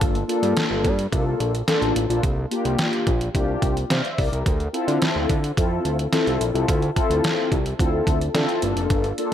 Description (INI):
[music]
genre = early-eighties boogie funk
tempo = 108 BPM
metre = 4/4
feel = straight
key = D minor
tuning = A4 = 441 Hz
[part]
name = mellow synth brass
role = accompaniment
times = 0.0-9.3 s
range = Bb3 to F5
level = -23 LUFS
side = left 2 dB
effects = chorus
[part]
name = fat analog bass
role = bass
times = 0.0-9.1 s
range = F1 to D3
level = -24 LUFS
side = equal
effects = none
[part]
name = detuned 8-bit digital drum machine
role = drums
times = 0.0-9.3 s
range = hi-hat, kick drum, snare drum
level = -24 LUFS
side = right 1 dB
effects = none
[sound]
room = light reverb, digital ambience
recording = none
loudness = -19 LUFS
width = side -10 dB against mid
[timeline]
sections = 0.0-9.3 A section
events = none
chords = 0.0 Gm9; 2.2 C9sus4; 4.5 Dm7; 8.6 Gm9